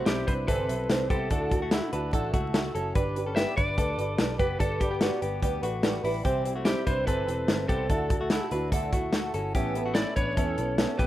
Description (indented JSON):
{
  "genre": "jangly indie pop",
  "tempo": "146 BPM",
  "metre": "4/4",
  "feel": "straight",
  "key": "D major",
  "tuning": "A4 = 441 Hz",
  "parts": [
    { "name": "fingerpicked twelve-string acoustic guitar", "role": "accompaniment", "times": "0.0-11.1 s", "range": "A2 to C5", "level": "-32 LUFS", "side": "right 4 dB", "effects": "analog chorus" },
    { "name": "direct-recorded clean electric guitar", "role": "arpeggios", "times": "0.0-11.1 s", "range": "G3 to B4", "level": "-33 LUFS", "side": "left 4 dB", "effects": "none" },
    { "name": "lightly driven lead guitar", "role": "melody", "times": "0.1-11.1 s", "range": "G4 to E5", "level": "-32 LUFS", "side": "equal", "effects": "none" },
    { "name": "vintage muted picked electric bass", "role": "bass", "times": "0.1-11.1 s", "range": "E1 to E2", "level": "-34 LUFS", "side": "equal", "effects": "none" },
    { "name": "modern studio drum kit", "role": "drums", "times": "0.1-11.1 s", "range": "hi-hat, kick drum, snare drum", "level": "-28 LUFS", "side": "equal", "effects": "none" }
  ],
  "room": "light reverb, small room ambience",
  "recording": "rough home demo mix, vinyl crackle",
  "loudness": "-25 LUFS",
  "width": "side -14 dB against mid",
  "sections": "0.0-11.1 A section",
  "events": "none",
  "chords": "0.0 C; 1.3 Dadd9; 3.0 G; 6.2 C; 7.9 Dadd9; 9.5 Aadd9"
}